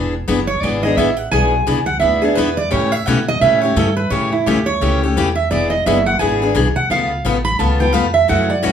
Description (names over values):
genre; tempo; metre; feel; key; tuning
acoustic string swing (jazz manouche); 172 BPM; 4/4; swing 60% on 8ths; E mixolydian; A4 = 441 Hz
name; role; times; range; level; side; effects
picked steel-string acoustic guitar; accompaniment; 0.0-8.7 s; C#3 to B4; -18 LUFS; left 4 dB; none
upright bass; bass; 0.0-8.7 s; E1 to B2; -20 LUFS; equal; none
picked steel-string acoustic guitar; second line; 0.5-8.7 s; E4 to B5; -17 LUFS; right 4 dB; none
room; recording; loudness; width
moderate studio ambience, RT60 0.5 s; studio reverb; -14 LUFS; side -8 dB against mid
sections
0.0-8.7 A section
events
steel-string acoustic guitar solo 0.0-8.7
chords
0.0 E7; 2.7 A7; 5.5 E7; 6.9 C#aug7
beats
0.28 0.63 0.98 | 1.33 1.68 2.02 2.37 | 2.72 3.07 3.42 3.77 | 4.12 4.47 4.82 5.16 | 5.51 5.86 6.21 6.56 | 6.91 7.26 7.61 7.96 | 8.30 8.65